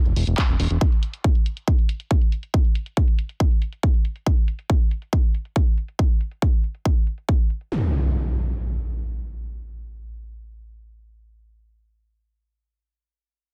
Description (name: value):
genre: uplifting trance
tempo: 139 BPM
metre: 4/4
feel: straight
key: unclear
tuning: A4 = 440 Hz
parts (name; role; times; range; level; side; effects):
- fat analog bass; bass; 0.1-0.8 s; E1; -23 LUFS; equal; sidechain pumping
- big-room dance drum kit; drums; 0.1-7.7 s; handclaps, hi-hat; -34 LUFS; equal; low-pass filter on hats, low-pass filter on cymbals, low-pass filter on snare
- electronic kick drum; drums; 0.4-7.4 s; none; -21 LUFS; equal; none
- impact; sound effects; 7.7-11.5 s; none; -28 LUFS; equal; none
room: little or no reverb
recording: dense, heavily limited modern master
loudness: -22 LUFS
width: mono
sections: 0.0-7.7 A section; 7.7-11.2 B section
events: none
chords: none